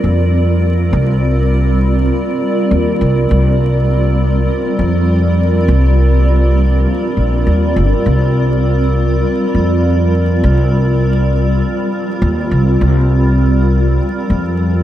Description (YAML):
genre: ambient dub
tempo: 101 BPM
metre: 4/4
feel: swing 56% on 16ths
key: unclear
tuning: A4 = 441 Hz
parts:
  - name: granular cloud pad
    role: sustained chords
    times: 0.0-14.8 s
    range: G3 to D5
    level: -16 LUFS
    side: equal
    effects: built-in reverb
  - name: upright bass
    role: bass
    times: 0.0-14.8 s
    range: G1 to F2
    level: -12 LUFS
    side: equal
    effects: none
room: moderate echo chamber reverb, RT60 1.8 s, small room ambience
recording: vinyl crackle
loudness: -11 LUFS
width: side -12 dB against mid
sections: 0.0-14.8 A section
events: none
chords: 0.0 C7sus2